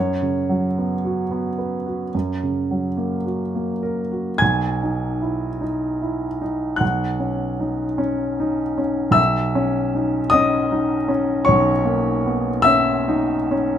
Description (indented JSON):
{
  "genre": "classical, romantic nocturne for solo piano",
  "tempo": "46-55 BPM",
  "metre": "4/4",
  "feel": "rubato",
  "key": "B major",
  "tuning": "A4 = 438 Hz",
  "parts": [
    { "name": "warm grand piano", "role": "solo", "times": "0.0-13.8 s", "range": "B1 to G#6", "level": "-18 LUFS", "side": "equal", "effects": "none" }
  ],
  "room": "moderate stone room reverb, RT60 1.2 s",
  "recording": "none",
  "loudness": "-18 LUFS",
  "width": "side -9 dB against mid",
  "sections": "0.0-4.4 A section; 4.4-13.8 B section",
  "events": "none",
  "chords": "0.0 F#sus4; 2.1 F#; 4.4 B; 6.8 F#5/B; 9.2 C#m13/B",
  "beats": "1.04 2.14 3.25 | 4.41 5.62 6.82 8.01 | 9.18 10.36 11.49 12.67"
}